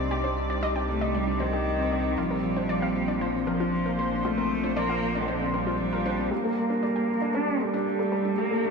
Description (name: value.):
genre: piano and strings electronica.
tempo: 116 BPM.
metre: 4/4.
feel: straight.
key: G minor.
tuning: A4 = 440 Hz.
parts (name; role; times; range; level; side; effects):
lush unison pad; sustained chords; 0.0-8.7 s; Bb2 to D5; -32 LUFS; right 1 dB; chorus.
felt-muted upright piano; riff; 0.0-8.7 s; F3 to F4; -29 LUFS; equal; digital delay.
round analog bass; bass; 0.0-6.3 s; Bb1 to C2; -34 LUFS; equal; none.
wide unison pluck; arpeggios; 0.1-8.6 s; F4 to G5; -34 LUFS; left 1 dB; digital delay.
warm cello; melody; 0.9-8.7 s; D3 to D4; -29 LUFS; equal; low-pass filter, digital delay.
room: moderate huge ambient reverb, RT60 7.4 s.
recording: studio ambience.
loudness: -24 LUFS.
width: side -4 dB against mid.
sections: 0.0-6.3 A section; 6.3-8.7 B section.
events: build-up 6.3-8.7; filter sweep on analog synth pad 6.3-8.7; filter sweep on cello 6.3-8.7.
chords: 0.0 Cmadd9; 2.2 Bbadd9; 6.3 Gmadd9.